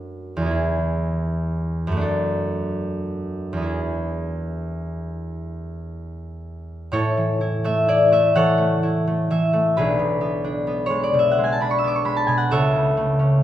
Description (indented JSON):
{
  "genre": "classical, solo harp piece",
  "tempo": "36-44 BPM (dotted quarters)",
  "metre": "6/8",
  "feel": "rubato",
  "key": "A major",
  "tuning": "A4 = 439 Hz",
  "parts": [
    { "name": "concert harp", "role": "solo", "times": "0.0-13.4 s", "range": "B1 to E6", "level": "-19 LUFS", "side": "equal", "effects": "none" }
  ],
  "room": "wet recital hall reverb, RT60 1.5 s",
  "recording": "recorded in a church or concert hall",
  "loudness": "-19 LUFS",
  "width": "side -12 dB against mid",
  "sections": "0.0-6.9 A section; 6.9-13.4 B section",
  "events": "none",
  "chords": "0.0 D/F#; 0.5 E; 2.0 D/F#; 3.7 E; 6.9 A; 9.8 G#dim/B; 12.5 A/C#"
}